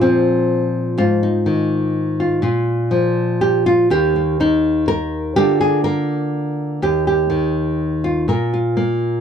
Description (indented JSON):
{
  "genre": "folk, solo fingerstyle acoustic guitar",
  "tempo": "124 BPM",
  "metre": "3/4",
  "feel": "straight",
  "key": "Eb major",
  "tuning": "A4 = 442 Hz",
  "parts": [
    { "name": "nylon-string guitar", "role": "solo", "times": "0.0-9.2 s", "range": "Eb2 to Bb4", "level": "-15 LUFS", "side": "equal", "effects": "none" }
  ],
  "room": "light reverb",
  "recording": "dry, close 1970s-style studio recording",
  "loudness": "-15 LUFS",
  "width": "side -8 dB against mid",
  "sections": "0.0-9.2 A section",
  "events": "none",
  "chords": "0.0 Bb5; 1.0 Ab5; 2.4 Bb5; 3.9 Eb; 5.4 Bb/D; 6.8 Eb; 8.3 Bb5"
}